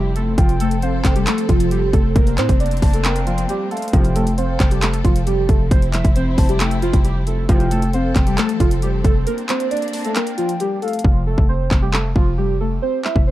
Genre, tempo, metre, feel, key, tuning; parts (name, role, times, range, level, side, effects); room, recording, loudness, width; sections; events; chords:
hip hop, trap; 135 BPM; 4/4; half-time; F major; A4 = 440 Hz
warbly lo-fi synth keys; melody; 0.0-13.3 s; F3 to E5; -21 LUFS; equal; chorus, phaser
warm symphonic string section; sustained chords; 0.0-11.0 s; F3 to A4; -29 LUFS; equal
growling 808-style bass; bass; 0.0-13.3 s; F1 to A2; -20 LUFS; equal
trap drum kit; drums; 0.2-13.3 s; handclaps, hi-hat, kick drum; -17 LUFS; equal; overdrive
gliding portamento lead; second line; 0.4-11.0 s; F5 to A5; -32 LUFS; left 3 dB; chorus, tape echo
sync-sweep polysynth; stabs; 3.9-4.3, 7.5-7.8 s; A2 to F3; -27 LUFS; right 3 dB; chorus
digital ambience; dark, warm production; -15 LUFS; side -15 dB against mid
0.0-11.0 A section; 11.0-13.3 B section
break 9.3-11.0; hi-hats muted 11.0-13.3
0.4 F; 2.2 Bbadd9/F; 3.9 F; 5.7 C/F; 7.5 F; 9.3 Bbadd9; 11.0 F